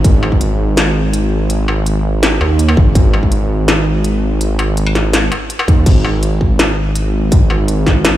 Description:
half-time drum and bass; 165 BPM; 4/4; half-time; A4 = 440 Hz
dark detuned saw bass; bass; 0.0-8.2 s; G#1 to D#2; -14 LUFS; equal
electronic kick drum; drums; 0.0-0.4, 2.8-3.3, 5.7-7.9 s; -12 LUFS; equal; distortion
industrial drum kit; drums; 0.0-8.1 s; crash cymbal, hi-hat, snare drum, struck metal; -17 LUFS; left 1 dB
little or no reverb; played on a big sound system in a bare room, large studio reverb; -11 LUFS; side -13 dB against mid
0.0-5.9 A section; 5.9-8.2 A section
drop 0.0-5.9, 5.9-8.2

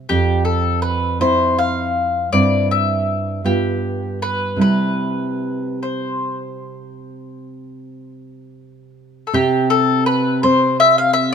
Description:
romantic duo for mandolin and classical guitar; 48-58 BPM (dotted quarters); 12/8; rubato; C major; A4 = 439 Hz
nylon-string guitar; accompaniment; 0.0-11.3 s; F2 to F4; -20 LUFS; right 2 dB
mandolin; melody; 0.1-11.3 s; G4 to F5; -18 LUFS; left 2 dB
light reverb; minimal, uncompressed stereo recording; -15 LUFS; side -7 dB against mid
0.0-9.3 A section; 9.3-11.3 B section
0.1 F5; 2.3 C/G; 3.4 G7; 4.6 C; 9.3 N.C.

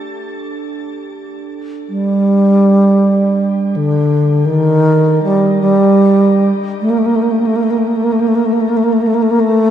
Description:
world meditative; free time; G hirajoshi; A4 = 441 Hz
bright bass flute; melody; 1.9-9.7 s; D3 to Bb3; -11 LUFS; right 1 dB; shimmer reverb, ping-pong delay
wet concert hall reverb, RT60 2.5 s; cassette tape; -10 LUFS; side -10 dB against mid
0.0-9.7 A section

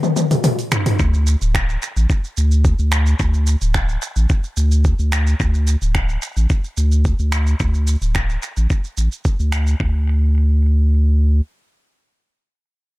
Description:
organic downtempo; 109 BPM; 4/4; straight; A4 = 440 Hz
deep house drum kit; drums; 0.0-9.8 s; finger snaps, hi-hat, shaker, toms; -22 LUFS; left 1 dB; analog delay
warm sub bass; bass; 1.0-11.4 s; D1 to D2; -15 LUFS; equal; sidechain pumping
electronic kick drum; drums; 1.0-9.9 s; -18 LUFS; equal; overdrive
little or no reverb; echo-heavy mix; -15 LUFS; side -18 dB against mid
1.0-9.8 A section; 9.8-12.0 B section
break 0.0-1.0; drum fill 0.0-1.0

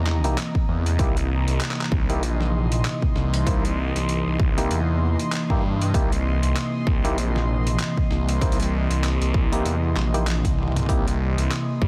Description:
glitch hop; 97 BPM; 4/4; swing 57% on 16ths; A4 = 440 Hz
warbly tape-like pad; sustained chords; 0.0-11.9 s; C3 to E4; -32 LUFS; equal; chorus, built-in reverb, phaser, sidechain pumping
phased detuned saw bass; bass; 0.0-11.9 s; Bb1 to G2; -25 LUFS; equal; phaser
airy breathy pad; texture; 0.0-11.9 s; E3 to C6; -33 LUFS; equal; chorus, sidechain pumping
boom bap sampler-style drum kit; drums; 0.1-11.7 s; handclaps, hi-hat, snare drum, toms; -33 LUFS; equal; overdrive, small room ambience
mellow clav; stabs; 0.2-11.1 s; Bb3 to C5; -33 LUFS; equal; sidechain pumping, low-pass filter, dub echo
electronic kick drum; drums; 0.5-11.9 s; -25 LUFS; equal; small room ambience
little or no reverb; dense, heavily limited modern master, vinyl crackle; -23 LUFS; mono
0.0-11.9 A section
drum fill 10.6-10.9
0.0 C7#9

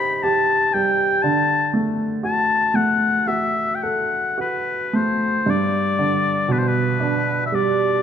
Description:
celtic folk, Celtic slow air; 54-60 BPM; 4/4; rubato; G major; A4 = 440 Hz
clear oboe; melody; 0.0-8.0 s; B4 to B5; -20 LUFS; left 3 dB
clear upright piano; accompaniment; 0.0-8.0 s; G2 to C5; -21 LUFS; right 3 dB
moderate church reverb, RT60 2.4 s; dark, warm production; -17 LUFS; side -8 dB against mid
0.0-5.5 A section; 5.5-8.0 B section
0.0 Cm; 1.2 D; 5.5 G

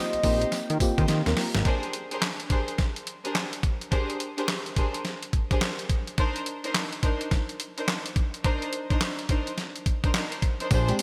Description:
R&B, new jack swing; 106 BPM; 4/4; swing 63% on 16ths; A4 = 439 Hz
mellow horn-like synth lead; melody; 0.0-1.1 s; Eb5; -32 LUFS; equal; chorus, digital delay
FM electric piano with soft pad layer; accompaniment; 0.0-1.7, 10.9-11.0 s; Ab3 to Bb5; -32 LUFS; equal; chorus
fat analog bass; bass; 0.1-1.6, 10.7-10.9 s; Ab1 to Eb3; -28 LUFS; equal
boom bap sampler-style drum kit; drums; 0.1-11.0 s; handclaps, hi-hat, kick drum, snare drum, tambourine; -29 LUFS; equal
warm studio string section; stabs; 0.2-10.9 s; D4 to C5; -34 LUFS; equal
group handclap; percussion; 1.1-1.3 s; barely audible
moderate lush hall reverb, RT60 1.9 s, digital ambience; bright 1980s-style digital production; -27 LUFS; mono
0.0-1.7 A section; 1.7-10.7 B section
FM electric piano fill 0.0-1.7; drum fill 1.1-1.7
0.0 Eb6; 1.7 Bb13; 6.2 Cm9

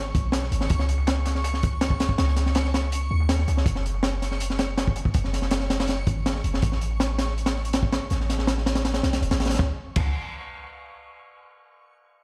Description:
drum and bass, jungle; 162 BPM; 4/4; straight; A4 = 440 Hz
warm 808-style bass; bass; 0.0-10.1 s; E1 to D#2; -28 LUFS; equal
backwards swelling texture; texture; 0.0-9.6 s; C#6; -41 LUFS; equal; built-in reverb
breakbeat sampler-style drum kit; drums; 0.1-9.6 s; hi-hat, snare drum; -46 LUFS; equal
crunchy breakbeat drum kit; drums; 0.1-10.0 s; crash cymbal, hi-hat, kick drum, snare drum; -27 LUFS; equal
small room ambience; played on a big sound system in a bare room, large studio reverb; -24 LUFS; mono
0.0-9.6 A section; 9.6-11.1 B section
0.0 G#m; 0.7 C#sus2; 3.7 F#sus2; 6.6 A; 9.6 N.C.

